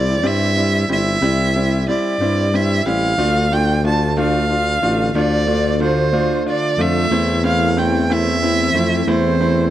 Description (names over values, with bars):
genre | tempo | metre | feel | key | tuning
six-eight pop ballad | 61 BPM (dotted quarters) | 6/8 | straight | unclear | A4 = 444 Hz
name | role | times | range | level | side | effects
warm violin | melody | 0.0-9.7 s | C5 to A5 | -19 LUFS | right 2 dB | none
clear concert grand piano | accompaniment | 0.0-9.7 s | G3 to F4 | -20 LUFS | left 1 dB | none
mellow tuba | bass | 0.0-9.7 s | G1 to G2 | -19 LUFS | equal | none
warm analog pad | sustained chords | 3.2-9.7 s | D3 to F4 | -25 LUFS | right 2 dB | chorus
room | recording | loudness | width
light reverb, small room ambience | none | -15 LUFS | side -12 dB against mid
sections
0.0-3.2 A section; 3.2-9.7 B section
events
none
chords
0.0 C; 3.2 Dm; 7.1 Am/E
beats
0.23 | 1.21 2.20 | 3.18 4.16 | 5.14 6.12 | 7.11 8.09 | 9.07